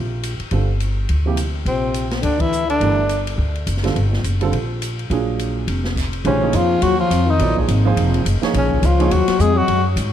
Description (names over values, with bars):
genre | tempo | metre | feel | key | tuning
modal jazz | 209 BPM | 4/4 | swing 59% on 8ths | G dorian, Eb dorian from 6.3 s | A4 = 440 Hz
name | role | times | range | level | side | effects
upright bass | bass | 0.0-10.1 s | F1 to Ab2 | -19 LUFS | equal | none
open jazz drum kit | drums | 0.2-10.0 s | crash cymbal, hi-hat, kick drum, ride cymbal, snare drum | -28 LUFS | left 1 dB | none
warm baby grand piano | accompaniment | 0.5-9.1 s | C3 to D5 | -24 LUFS | right 8 dB | none
breathy tenor saxophone | melody | 1.7-3.2, 6.3-9.9 s | C4 to Ab4 | -21 LUFS | equal | none
mellow trombone | second line | 1.7-3.2, 6.3-9.8 s | C3 to Ab3 | -22 LUFS | left 9 dB | tape echo
room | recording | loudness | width
light reverb, studio ambience | none | -16 LUFS | side -10 dB against mid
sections
0.0-6.3 A section; 6.3-10.1 B section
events
band accent 2.4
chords
0.0 Gm; 5.1 Bb7b13; 6.3 Ebm11